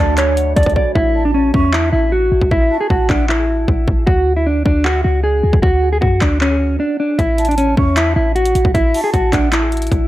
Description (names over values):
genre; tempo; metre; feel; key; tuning
hip hop, trap; 154 BPM; 4/4; half-time; A major; A4 = 441 Hz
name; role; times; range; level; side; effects
mellow electric guitar; melody; 0.0-10.1 s; C#4 to D5; -16 LUFS; equal; analog delay
breathy mellow jazz flute; second line; 0.0-3.3, 7.4-9.5 s; F#5 to C#6; -26 LUFS; right 2 dB; analog delay
deep dark ambient pad; sustained chords; 0.0-0.9 s; A3 to F#4; -26 LUFS; right 3 dB; chorus, built-in reverb
clean 808-style bass; bass; 0.0-10.1 s; A1 to F#2; -17 LUFS; equal; none
trap drum kit; drums; 0.2-10.0 s; handclaps, hi-hat, kick drum, rim click; -18 LUFS; equal; none
room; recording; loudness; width
light reverb; echo-heavy mix; -12 LUFS; side -15 dB against mid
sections
1.0-10.1 A section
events
hi-hats muted 1.0-7.2; break 6.8-7.2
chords
0.0 D; 1.0 A5; 4.1 D; 7.2 A5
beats
0.17 0.56 | 0.95 1.34 1.73 2.12 | 2.51 2.90 3.29 3.68 | 4.07 4.46 4.85 5.24 | 5.63 6.02 6.41 6.80 | 7.19 7.58 7.97 8.36 | 8.75 9.14 9.53 9.92